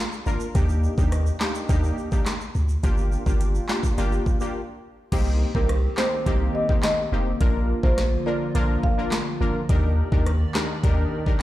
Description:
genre	dancehall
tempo	105 BPM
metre	4/4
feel	straight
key	C minor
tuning	A4 = 440 Hz
part	synth brass stab	accompaniment	0.0-11.4 s	Bb3 to Bb4	-28 LUFS	left 1 dB	chorus
part	tube shaker	percussion	0.1-4.5 s	none	-45 LUFS	right 7 dB	none
part	punchy sub bass	bass	0.3-11.1 s	F1 to Eb2	-22 LUFS	equal	none
part	island pop drum kit	drums	0.6-11.4 s	crash cymbal, handclaps, hi-hat, kick drum, rim click, snare drum	-24 LUFS	equal	overdrive
part	hollow soft pad	sustained chords	5.5-11.4 s	D3 to D5	-31 LUFS	equal	chorus, sidechain pumping
part	marimba with medium mallets	melody	5.5-8.9 s	Bb4 to F5	-28 LUFS	equal	none
room	digital ambience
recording	played on a big sound system in a bare room, stone room reverb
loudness	-20 LUFS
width	side -15 dB against mid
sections	0.0-5.1 A section; 5.1-11.4 B section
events	break 4.5-5.1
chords	0.0 Bb; 0.6 Ebmaj7; 2.8 Gm7; 5.1 Cm7; 7.4 Bb; 9.7 Ebmaj7

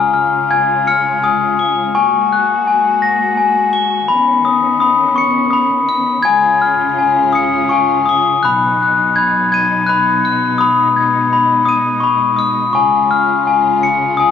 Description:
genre	children's music, lullaby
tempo	83 BPM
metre	3/4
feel	rubato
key	unclear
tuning	A4 = 440 Hz
part	glockenspiel with rubber mallets	melody	0.0-14.3 s	G#5 to B7	-12 LUFS	left 4 dB	none
part	rich studio string section	sustained chords	0.0-14.3 s	B2 to F#4	-20 LUFS	left 1 dB	none
room	moderate recital hall reverb, RT60 1.7 s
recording	worn, warbling old tape, cassette tape, warbly pitch drift, small room ambience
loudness	-11 LUFS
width	side -8 dB against mid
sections	0.0-14.3 A section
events	none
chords	0.0 C#; 1.9 F#add9; 4.1 Badd9; 6.2 C#; 8.4 B; 10.6 G#m/B; 12.7 C#

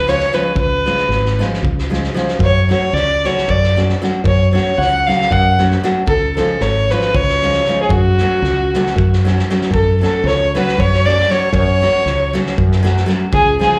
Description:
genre	balkan folk, Balkan wedding band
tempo	230 BPM (eighths)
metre	7/8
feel	straight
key	F# harmonic minor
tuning	A4 = 443 Hz
part	dark fiddle	melody	0.0-13.8 s	F#4 to F#5	-18 LUFS	equal	slapback echo
part	woody fretless electric bass	bass	0.0-13.6 s	G#1 to F#2	-18 LUFS	equal	none
part	nylon-string guitar	accompaniment	0.1-13.8 s	E#3 to F#4	-22 LUFS	equal	none
part	loose indie drum kit	percussion	0.1-13.7 s	kick drum, snare drum	-25 LUFS	equal	none
part	dark violin	second line	9.7-13.8 s	G#4 to D5	-26 LUFS	equal	none
room	light reverb, studio ambience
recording	live gig heard through the venue's PA, club reverb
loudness	-15 LUFS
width	mono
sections	0.0-9.7 A section; 9.7-13.8 A section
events	speeding up 0.0-13.8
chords	0.0 C#; 2.4 F#m; 6.1 C#; 7.9 F#m

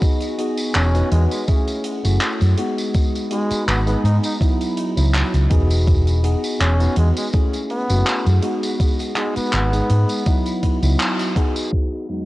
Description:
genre	vaporwave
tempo	82 BPM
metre	4/4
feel	swing 54% on 16ths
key	E major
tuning	A4 = 440 Hz
part	tine electric piano	accompaniment	0.0-12.3 s	E2 to B4	-23 LUFS	equal	wide subtle chorus, vintage 12-bit sampler grit, tape echo
part	warbly tape-like pad	sustained chords	0.0-12.3 s	E3 to B5	-34 LUFS	equal	chorus, built-in reverb, vintage 12-bit sampler grit
part	electronic kick drum	drums	0.0-11.9 s	none	-18 LUFS	equal	overdrive
part	tight metal drum kit	drums	0.0-12.2 s	crash cymbal, handclaps, hi-hat, tambourine	-26 LUFS	equal	none
part	warm flugelhorn	melody	0.8-10.3 s	G#3 to D#4	-27 LUFS	equal	vintage 12-bit sampler grit, tape echo
part	hollow-body short-scale fingered electric bass	bass	0.8-10.9 s	E1 to G#2	-16 LUFS	equal	none
room	light reverb, small room ambience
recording	dry, gritty hardware recording, cassette tape, low-pass filter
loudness	-16 LUFS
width	side -18 dB against mid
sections	0.0-11.7 A section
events	band accent 11.0-11.4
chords	0.0 Emaj9; 1.5 F#m9; 2.9 G#m7; 4.4 C#m11; 5.9 Emaj9; 7.3 F#m9; 8.8 G#m7; 10.3 C#m11 (rootless); 11.7 Emaj9

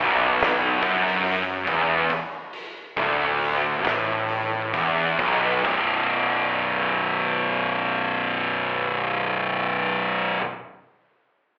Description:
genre	stoner and doom metal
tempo	65-72 BPM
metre	4/4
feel	straight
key	B minor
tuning	A4 = 440 Hz
part	thick fuzz guitar	riff	0.0-10.4 s	B1 to B2	-23 LUFS	equal	distortion
part	thick fuzz guitar	riff	0.0-10.4 s	B1 to B2	-27 LUFS	right 1 dB	distortion, slapback echo
part	fingered electric bass	bass	0.0-10.3 s	B0 to A1	-46 LUFS	equal	none
part	oversized low-tuned drum kit	drums	0.4-5.9 s	crash cymbal, hi-hat, kick drum, snare drum	-29 LUFS	equal	none
room	light reverb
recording	live gig heard through the venue's PA, club reverb, telephone sound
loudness	-20 LUFS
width	side -28 dB against mid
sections	0.0-5.7 A section; 5.7-9.3 B section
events	slowing down 0.0-5.7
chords	0.0 Bm; 5.7 B5

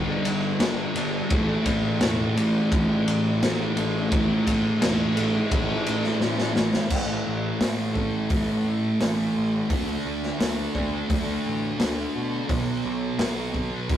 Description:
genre	rock, shoegaze and dream pop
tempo	86 BPM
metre	4/4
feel	straight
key	unclear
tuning	A4 = 440 Hz
part	thick fuzz guitar	riff	0.0-14.0 s	G2 to D4	-24 LUFS	equal	distortion
part	fuzz picked electric bass	bass	0.0-14.0 s	E1 to B2	-32 LUFS	equal	overdrive
part	raw garage drum kit	drums	0.3-14.0 s	crash cymbal, hi-hat, kick drum, ride cymbal, snare drum	-26 LUFS	left 1 dB	none
room	moderate studio reverb, RT60 0.6 s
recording	rough rehearsal-room recording, tube saturation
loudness	-22 LUFS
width	side -10 dB against mid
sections	0.0-6.9 A section; 6.9-14.0 B section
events	drum fill 6.2-6.9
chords	0.0 G5; 1.3 A5; 9.7 D5; 12.5 B5

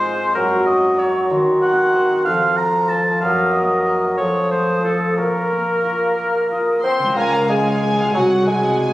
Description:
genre	cinematic, playful, whimsical film cue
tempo	62 BPM (dotted quarters)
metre	6/8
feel	straight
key	Bb minor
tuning	A4 = 441 Hz
part	mellow hollow concert flute	second line	0.0-8.9 s	Gb5 to F6	-27 LUFS	left 1 dB	none
part	warm clarinet	second line	0.0-8.9 s	Gb4 to C5	-21 LUFS	equal	none
part	warm oboe	second line	0.0-6.8 s	A4 to Bb5	-19 LUFS	right 1 dB	none
part	warm bassoon	accompaniment	0.0-8.9 s	Eb3 to C4	-22 LUFS	right 1 dB	none
part	concert harp	arpeggios	0.0-8.9 s	F2 to Eb5	-27 LUFS	left 2 dB	none
part	warm studio violin section	second line	6.8-8.9 s	Gb5 to C6	-28 LUFS	left 2 dB	none
part	warm studio viola section	accompaniment	6.8-8.9 s	Gb4 to C5	-28 LUFS	right 1 dB	none
part	warm studio violin section	melody	7.2-8.9 s	F5 to Ab5	-26 LUFS	left 2 dB	none
part	warm French horn section	sustained chords	7.2-8.9 s	F4 to Ab4	-26 LUFS	left 2 dB	none
part	dark studio cello section	bass	7.2-8.9 s	C2 to Db2	-24 LUFS	equal	none
part	warm studio double bass section	bass	7.2-8.9 s	C2 to Db2	-24 LUFS	right 1 dB	none
room	moderate scoring stage reverb, RT60 2.0 s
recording	recorded on a phone in the room, studio reverb, compression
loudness	-15 LUFS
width	side -16 dB against mid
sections	0.0-7.2 A section; 7.2-8.9 B section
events	none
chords	0.4 Gb; 1.3 Cdim/Eb; 2.3 F; 3.2 Ebm/Gb; 4.2 F7; 5.2 Bbm; 7.2 Db; 8.1 Ab7/C

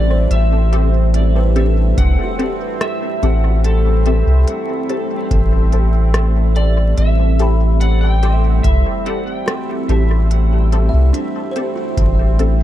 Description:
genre	ambient dub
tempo	72 BPM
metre	4/4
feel	straight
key	A dorian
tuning	A4 = 440 Hz
part	electric slide guitar	melody	0.0-12.6 s	A4 to G5	-25 LUFS	left 1 dB	tape echo
part	deep dark ambient pad	sustained chords	0.0-12.6 s	G3 to E5	-25 LUFS	right 2 dB	chorus, built-in reverb
part	buzzing kalimba	arpeggios	0.0-12.6 s	D4 to C6	-28 LUFS	right 2 dB	tape echo
part	filtered dub chord stab	stabs	0.0-12.6 s	C4 to A4	-26 LUFS	left 3 dB	phaser, ensemble chorus, dub echo
part	round analog bass	bass	0.0-12.6 s	A1 to C2	-13 LUFS	equal	none
part	bubbling stepped-filter texture	texture	0.0-12.6 s	C4	-27 LUFS	right 2 dB	chorus, built-in reverb
part	organic electronic drum kit	drums	0.3-12.6 s	hi-hat, rim click	-27 LUFS	equal	dub echo
part	electronic kick drum	drums	2.0-12.1 s	none	-20 LUFS	equal	none
room	little or no reverb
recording	echo-heavy mix, vinyl crackle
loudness	-13 LUFS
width	side -13 dB against mid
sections	0.0-12.6 A section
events	none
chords	0.0 Am7

